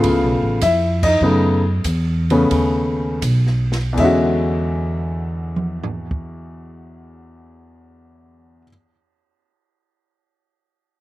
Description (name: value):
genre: jazz piano trio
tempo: 76-105 BPM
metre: 4/4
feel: swing 69% on 8ths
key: E mixolydian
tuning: A4 = 440 Hz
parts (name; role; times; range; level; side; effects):
- warm baby grand piano; melody; 0.0-8.7 s; E2 to F5; -18 LUFS; left 1 dB; slapback echo
- upright bass; bass; 0.0-8.6 s; A1 to F#2; -20 LUFS; right 1 dB; none
- open jazz drum kit; drums; 0.0-6.2 s; crash cymbal, hi-hat, kick drum, ride cymbal, snare drum, toms; -28 LUFS; right 1 dB; none
room: little or no reverb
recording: recorded outdoors, with no room sound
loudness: -16 LUFS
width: side -16 dB against mid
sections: 0.0-4.0 A section; 4.0-7.2 B section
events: slowing down 0.0-4.0; band accent 0.9-1.2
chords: 0.0 C#7alt; 1.2 B9; 4.0 E13